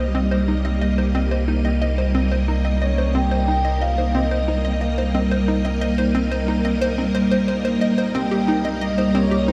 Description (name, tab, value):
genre	ambient, sequencer-driven space music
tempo	90 BPM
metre	4/4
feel	straight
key	C minor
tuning	A4 = 440 Hz
part	string machine, full ensemble	sustained chords	0.0-9.5 s	G3 to Eb5	-24 LUFS	equal	ensemble chorus
part	hollow square pluck	riff	0.0-9.5 s	C4 to Eb5	-27 LUFS	equal	subtle chorus, tape echo
part	warm sub bass	bass	0.0-9.5 s	C2	-25 LUFS	equal	none
part	soft octave-layered synth lead	melody	2.8-9.5 s	C5 to G5	-30 LUFS	equal	chorus, phaser, tape echo
room	moderate lush hall reverb, RT60 3.2 s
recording	dreamy mix soaked in reverb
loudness	-20 LUFS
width	mono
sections	0.0-9.5 A section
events	none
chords	0.0 Cm7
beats	0.48 1.15 1.81 | 2.48 3.15 3.81 4.48 | 5.15 5.81 6.48 7.15 | 7.81 8.48 9.15